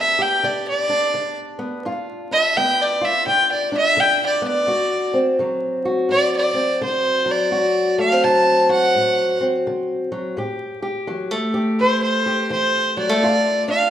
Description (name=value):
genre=acoustic country blues, solo or duo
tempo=84 BPM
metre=4/4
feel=swing 63% on 8ths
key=D mixolydian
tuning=A4 = 440 Hz
part: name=warm fiddle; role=melody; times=0.0-13.9 s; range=C5 to A5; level=-18 LUFS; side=equal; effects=none
part: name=fingerpicked old ladder-braced acoustic guitar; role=accompaniment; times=0.0-13.9 s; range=D2 to G4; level=-21 LUFS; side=equal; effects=none
room=wet recital hall reverb, RT60 1.4 s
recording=recorded in a church or concert hall, vinyl crackle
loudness=-17 LUFS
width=side -10 dB against mid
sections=0.0-13.9 A section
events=fiddle solo 0.0-13.9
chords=0.0 G7; 4.7 D7; 10.4 A5; 13.2 G7(no3)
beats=0.44 1.14 | 1.85 2.56 3.26 3.97 | 4.68 5.39 6.10 6.81 | 7.52 8.23 8.94 9.65 | 10.36 11.07 11.79 12.50 | 13.21